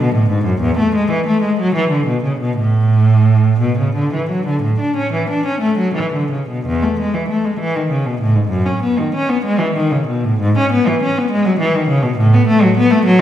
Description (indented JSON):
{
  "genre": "classical, baroque-style suite movement for unaccompanied cello",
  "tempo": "56-70 BPM (dotted quarters)",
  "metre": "12/8",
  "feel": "rubato",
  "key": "A major, E major from 6.6 s",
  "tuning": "A4 = 437 Hz",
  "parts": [
    { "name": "warm cello", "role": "solo", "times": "0.0-13.2 s", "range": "E2 to D4", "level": "-13 LUFS", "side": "equal", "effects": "none" }
  ],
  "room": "wet recital hall reverb, RT60 1.4 s",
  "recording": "heard from further back in the room",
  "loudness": "-13 LUFS",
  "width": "side -11 dB against mid",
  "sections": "0.0-6.6 A section; 6.6-13.2 A section",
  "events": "none",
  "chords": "none"
}